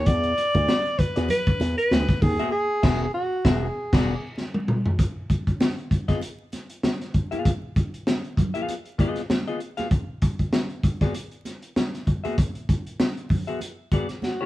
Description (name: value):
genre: funk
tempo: 98 BPM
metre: 4/4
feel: swing 56% on 16ths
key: unclear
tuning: A4 = 440 Hz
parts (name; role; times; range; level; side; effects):
- breathy alto saxophone; melody; 0.0-4.2, 14.2-14.5 s; F#4 to D5; -25 LUFS; equal; none
- slap bass with an envelope filter; bass; 0.0-4.1 s; E1 to E2; -26 LUFS; equal; none
- crunchy breakbeat drum kit; drums; 0.1-14.4 s; crash cymbal, hi-hat, kick drum, snare drum, toms; -23 LUFS; equal; none
- congas; percussion; 0.1-14.4 s; none; -36 LUFS; right 3 dB; none
- semi-hollow electric guitar; accompaniment; 1.2-14.5 s; B3 to F5; -30 LUFS; left 4 dB; none
room: light reverb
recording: band playing live in one room, vinyl crackle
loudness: -22 LUFS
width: side -16 dB against mid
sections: 0.0-5.0 A section; 5.0-14.5 B section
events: band accent 2.5-5.0; drum fill 4.4-5.0, 14.2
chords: 0.1 E9; 5.0 Cb6; 9.9 E9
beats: | 0.07 0.68 1.29 1.91 | 2.52 3.14 3.76 4.37 | 4.99 5.60 6.22 6.83 | 7.45 8.07 8.68 9.30 | 9.91 10.53 11.15 11.76 | 12.38 12.99 13.61 14.22